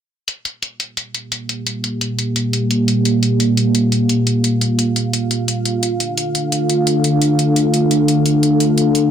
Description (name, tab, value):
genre	dark technical drum and bass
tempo	173 BPM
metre	4/4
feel	straight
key	G minor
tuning	A4 = 443 Hz
part	dark analog pad	sustained chords	1.4-9.1 s	Bb3 to F5	-15 LUFS	equal	chorus
part	electronic hi-hat	drums	0.3-9.0 s	none	-21 LUFS	left 1 dB	low-pass filter on hats, low-pass filter on room
room	light reverb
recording	dense, heavily limited modern master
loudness	-15 LUFS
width	side -8 dB against mid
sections	0.3-9.1 A section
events	filter sweep on analog synth pad 0.3-9.1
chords	0.3 Gm7; 5.8 Dm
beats	| 0.28 0.63 0.97 1.32 | 1.67 2.01 2.36 2.71 | 3.05 3.40 3.75 4.09 | 4.44 4.79 5.13 5.48 | 5.83 6.17 6.52 6.87 | 7.21 7.56 7.91 8.26 | 8.60 8.95